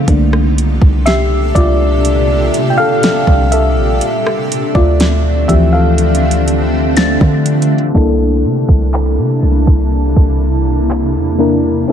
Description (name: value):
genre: contemporary R&B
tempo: 61 BPM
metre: 4/4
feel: straight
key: unclear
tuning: A4 = 440 Hz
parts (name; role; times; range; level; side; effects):
- mellow FM electric piano; accompaniment; 0.0-11.9 s; D3 to G5; -15 LUFS; left 2 dB; chorus
- granular cloud pad; sustained chords; 0.0-11.9 s; Bb2 to A5; -18 LUFS; equal; built-in reverb, sidechain pumping
- warm 808-style bass; bass; 0.0-11.8 s; Bb1 to D3; -14 LUFS; equal; none
- smooth R&B drum kit; drums; 0.1-11.9 s; handclaps, hi-hat, kick drum, rim click, snare drum; -14 LUFS; right 1 dB; overdrive, vintage 12-bit sampler grit
- mallet-like synth pluck; texture; 1.1-8.4 s; A6 to C7; -23 LUFS; left 5 dB; chorus, phaser, ping-pong delay
room: light reverb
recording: low-pass filter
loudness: -10 LUFS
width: side -8 dB against mid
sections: 0.0-7.9 A section; 7.9-11.9 B section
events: FM electric piano solo 0.0-7.9; filter sweep 7.9-11.9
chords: 0.1 Csus2; 4.0 Dm7; 7.9 C13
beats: | 0.08 1.06 2.05 3.03 | 4.01 5.00 5.98 6.96 | 7.95 8.93 9.91 10.90 | 11.88